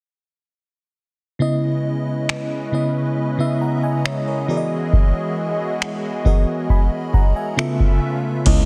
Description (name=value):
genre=contemporary R&B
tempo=68 BPM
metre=4/4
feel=straight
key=C# dorian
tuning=A4 = 440 Hz
part: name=FM electric piano with soft pad layer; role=accompaniment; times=1.4-8.7 s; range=C#3 to B5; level=-23 LUFS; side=equal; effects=chorus, tremolo
part: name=lush unison pad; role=sustained chords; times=1.4-8.7 s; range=C#3 to E5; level=-30 LUFS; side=equal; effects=chorus
part: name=booming analog drum machine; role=drums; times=2.3-8.7 s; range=crash cymbal, finger snaps, hi-hat, kick drum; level=-17 LUFS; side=equal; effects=soft clipping on snare, vintage 12-bit sampler grit
part: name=fat analog bass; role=bass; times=8.5-8.7 s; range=C#2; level=-19 LUFS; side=equal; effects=none
room=digital ambience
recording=dense, heavily limited modern master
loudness=-20 LUFS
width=mono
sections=1.4-8.5 A section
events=none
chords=1.4 C#m9; 4.5 Emaj9#11; 7.6 C#7alt